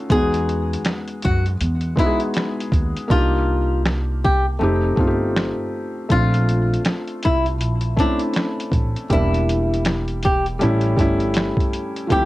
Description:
lo-fi hip hop; 80 BPM; 4/4; swing 63% on 16ths; A4 = 440 Hz
felt-muted upright piano; accompaniment; 0.0-12.3 s; F3 to G#4; -23 LUFS; equal; plate reverb
flamenco guitar; melody; 0.1-12.3 s; D4 to G#4; -23 LUFS; left 1 dB; cassette tape, plate reverb
upright bass; bass; 0.1-12.3 s; E1 to F#2; -22 LUFS; equal
lo-fi sampler-style drum kit; drums; 0.1-12.3 s; finger snaps, hi-hat, kick drum, snare drum; -21 LUFS; equal; overdrive, cassette tape
light reverb; home recording on cassette; -17 LUFS; side -17 dB against mid
0.0-12.3 A section
hi-hats muted 3.1-6.1
0.1 Emaj7; 3.1 Cm7; 4.6 F7; 6.1 Bbmaj7; 9.1 Em7b5; 10.6 A7

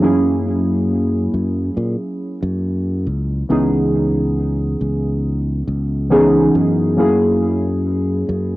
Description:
vaporwave; 69 BPM; 4/4; straight; A4 = 440 Hz
warbly lo-fi synth keys; accompaniment; 0.0-8.6 s; E3 to G#4; -17 LUFS; equal; lush chorus, cassette tape, tape echo
fingered electric bass; bass; 0.0-8.6 s; C#2 to A#2; -20 LUFS; equal
light reverb; home recording on cassette; -15 LUFS; side -17 dB against mid
0.0-8.6 A section
0.0 F#9; 3.5 C#m9; 7.0 F#9

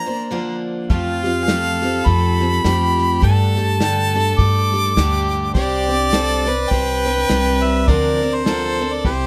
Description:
acoustic folk duo or small band; 103 BPM; 4/4; swing 58% on 8ths; A4 = 440 Hz
bright harmonica; melody; 0.0-9.3 s; C5 to D6; -23 LUFS; equal
picked twelve-string acoustic guitar; accompaniment; 0.0-9.3 s; G2 to C5; -25 LUFS; equal
rich fiddle; second line; 0.9-9.3 s; F4 to B4; -25 LUFS; equal
upright bass; bass; 0.9-9.3 s; C2 to G2; -23 LUFS; equal
natural country drum kit; drums; 0.9-9.2 s; kick drum, snare drum; -24 LUFS; equal
light reverb; close, detailed microphones; -18 LUFS; mono
0.0-9.3 A section
0.0 Bbadd9; 0.9 Fadd9; 3.2 Gsus2; 5.6 Csus2; 7.9 Bbadd9/D

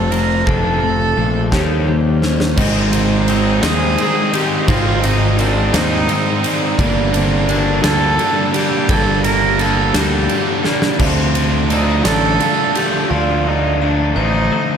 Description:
post-rock; 57 BPM (dotted quarters); 6/8; straight; A4 = 437 Hz
warm cello; melody; 0.0-14.8 s; Bb3 to Bb4; -20 LUFS; right 1 dB; analog delay
twelve-string electric guitar; arpeggios; 0.0-14.8 s; G2 to A4; -26 LUFS; left 3 dB
vibraphone with hard mallets; arpeggios; 0.0-14.8 s; A4 to Bb5; -26 LUFS; right 5 dB; analog delay
distorted electric guitar; riff; 0.0-14.8 s; G2 to Eb4; -21 LUFS; left 9 dB; distortion
fuzz picked electric bass; bass; 0.0-14.5 s; F1 to Eb2; -19 LUFS; equal; overdrive
huge arena drum kit; drums; 0.1-12.9 s; crash cymbal, kick drum, ride cymbal, snare drum; -20 LUFS; right 1 dB
crunchy overdriven guitar; riff; 2.6-13.1 s; G2 to Eb4; -21 LUFS; right 10 dB
moderate plate reverb, RT60 1.9 s, small room ambience; dreamy mix soaked in reverb; -13 LUFS; side -7 dB against mid
0.0-2.6 A section; 2.6-14.8 B section
build-up 0.0-2.6; drum fill 2.2-2.6, 10.6-11.0
0.5 Dm7/F; 1.5 Eb7; 2.6 Ab; 6.8 Gmadd9; 11.0 Dm

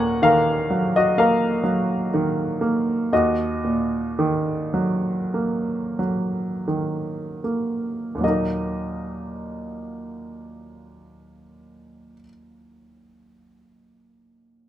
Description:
classical, lyrical solo piano; 37-64 BPM; 4/4; rubato; Eb minor; A4 = 439 Hz
clear baby grand piano; solo; 0.0-14.7 s; Eb2 to Ab5; -21 LUFS; equal
light reverb; close, detailed microphones; -20 LUFS; side -12 dB against mid
0.0-8.2 A section; 8.2-14.4 B section
slowing down 0.0-8.2
0.0 Ebm7; 3.1 Ebm

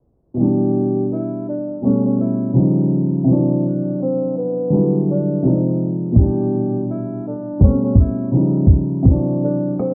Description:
lo-fi hip hop; 83 BPM; 4/4; swing 58% on 16ths; G major; A4 = 440 Hz
felt-muted upright piano; accompaniment; 0.3-9.9 s; Bb2 to E4; -19 LUFS; equal; cassette tape
breathy tenor saxophone; melody; 0.4-9.9 s; B3 to G4; -26 LUFS; equal
dusty soul sampler-style drum kit; drums; 6.2-9.9 s; hi-hat, kick drum, rim click; -14 LUFS; equal
wet studio reverb, RT60 0.5 s; worn, warbling old tape, cassette tape, vinyl crackle, warbly pitch drift, low-pass filter; -18 LUFS; mono
0.4-9.9 A section
0.4 G6; 1.8 A9; 2.5 Eb9; 3.3 D9; 4.7 Em9; 5.4 Ab6; 6.2 G6; 7.6 A9; 8.3 Eb9; 9.1 D9

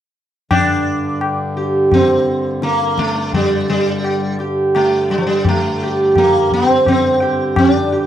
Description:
indian classical, Hindustani; 85 BPM; 5/4; straight; G raga darbari; A4 = 436 Hz
sitar; melody; 0.5-8.1 s; F3 to G4; -14 LUFS; right 1 dB
pedal harmonium; drone; 0.5-8.1 s; G2 to D3; -24 LUFS; left 1 dB
tabla; percussion; 0.5-7.8 s; -20 LUFS; left 4 dB
moderate booth ambience, RT60 0.2 s; dry, close 1970s-style studio recording; -13 LUFS; side -10 dB against mid
0.5-8.1 A section

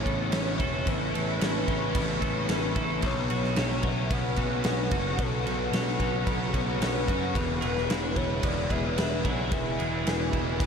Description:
rock, shoegaze and dream pop; 111 BPM; 4/4; straight; A major; A4 = 435 Hz
warm velvety synth lead; melody; 0.0-10.7 s; A4 to G#5; -37 LUFS; left 2 dB; chorus, ping-pong delay
deep dark ambient pad; sustained chords; 0.0-10.7 s; B4 to E6; -35 LUFS; left 4 dB; chorus, built-in reverb
twangy electric guitar; arpeggios; 0.0-10.7 s; E3 to A4; -38 LUFS; right 3 dB; lush chorus, ping-pong delay
biting overdriven guitar; riff; 0.0-10.7 s; E2 to F#4; -34 LUFS; left 8 dB; ensemble chorus
direct-recorded clean electric guitar; riff; 0.0-10.7 s; E2 to F#4; -35 LUFS; right 9 dB; reverse reverb
fuzz picked electric bass; bass; 0.0-10.7 s; E1 to F#2; -31 LUFS; equal; overdrive
big rock drum kit; drums; 0.1-10.7 s; crash cymbal, kick drum, snare drum; -30 LUFS; equal
moderate huge ambient reverb, RT60 7.3 s; dreamy mix soaked in reverb; -25 LUFS; side -6 dB against mid
0.0-10.7 A section
0.0 Aadd9; 3.0 Bsus2; 7.4 E

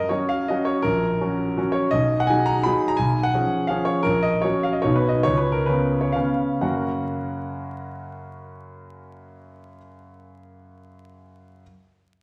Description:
classical, romantic triple-time dance for piano with dotted rhythms; 117-180 BPM; 3/4; rubato; F# major; A4 = 441 Hz
clear grand piano; solo; 0.0-11.6 s; A#1 to B5; -23 LUFS; equal
wet recital hall reverb, RT60 1.4 s; heard from further back in the room, vinyl crackle; -22 LUFS; mono
0.0-6.6 A section; 6.6-9.4 B section
slowing down 3.5-6.6
0.0 F#5; 0.8 F#/A#; 1.9 G#m7/B; 3.0 C#7/B; 4.1 F#/A#; 4.8 B; 5.2 C#7; 6.6 F#

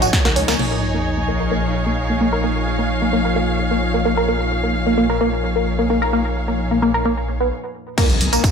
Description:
driving peak-time techno; 130 BPM; 4/4; straight; Bb minor; A4 = 441 Hz
tight sequenced synth; riff; 0.0-8.4 s; Bb3 to Bb4; -20 LUFS; equal; chorus, phaser, sidechain pumping, tape echo
dark detuned saw bass; bass; 0.0-8.4 s; Ab1 to Db2; -24 LUFS; equal; sidechain pumping
deep dark ambient pad; drone; 0.0-7.5 s; Bb2 to F3; -25 LUFS; left 3 dB; chorus, built-in reverb, sidechain pumping
punchy analog drum machine; drums; 0.0-0.7, 8.0-8.5 s; crash cymbal, hi-hat, snare drum, tambourine; -21 LUFS; right 1 dB
dark chamber string section; texture; 0.0-8.5 s; Eb4 to F5; -24 LUFS; right 1 dB; sidechain pumping
electronic kick drum; drums; 0.1-0.2, 8.0-8.5 s; -17 LUFS; equal; distortion, overdrive
sub drop and impact; sound effects; 0.6-2.4, 8.0-8.5 s; -26 LUFS; equal
light reverb, digital ambience; -16 LUFS; side -6 dB against mid
0.6-8.0 A section
drum fill 0.1-0.6; band accent 0.5; impact 0.6-2.4, 8.0-8.5; filter sweep on synth arpeggio sound 0.6-8.0; stop 7.5-8.0
0.0 Bbm

